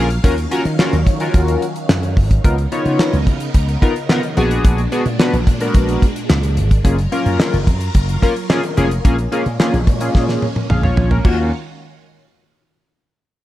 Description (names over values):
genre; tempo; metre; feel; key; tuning
early-eighties boogie funk; 109 BPM; 4/4; straight; Eb minor; A4 = 441 Hz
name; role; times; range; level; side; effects
chorused polysynth; accompaniment; 0.0-11.5 s; Bb3 to F5; -19 LUFS; left 2 dB; none
phased string machine; sustained chords; 0.0-11.5 s; Bb2 to F5; -26 LUFS; equal; ensemble chorus, phaser
slap bass with an envelope filter; bass; 0.0-11.5 s; F1 to Eb3; -18 LUFS; equal; none
damped 70s drum kit; drums; 0.1-11.4 s; crash cymbal, handclaps, hi-hat, kick drum, snare drum, toms; -16 LUFS; equal; gated reverb
room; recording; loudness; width
studio ambience; none; -14 LUFS; side -14 dB against mid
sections
0.0-11.2 A section; 11.2-13.4 B section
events
drum fill 10.1-11.2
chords
0.2 Ebm9; 2.4 Db13; 4.4 Bb7b9b13; 6.8 Gbmaj7; 9.0 Bbm7; 11.2 Ebm9